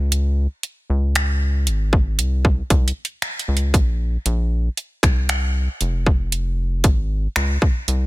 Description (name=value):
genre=contemporary R&B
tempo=58 BPM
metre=4/4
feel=straight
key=Db major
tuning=A4 = 440 Hz
part: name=rubbery square bass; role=bass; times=0.0-8.1 s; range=F1 to Db2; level=-19 LUFS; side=equal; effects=none
part: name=trap drum kit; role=drums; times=0.1-8.1 s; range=finger snaps, hi-hat, kick drum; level=-19 LUFS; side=equal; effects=soft clipping on snare
room=little or no reverb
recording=dense, heavily limited modern master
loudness=-18 LUFS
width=side -19 dB against mid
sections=0.0-8.1 A section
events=none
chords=none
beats=| 0.12 1.15 2.19 3.22 | 4.25 5.29 6.32 7.36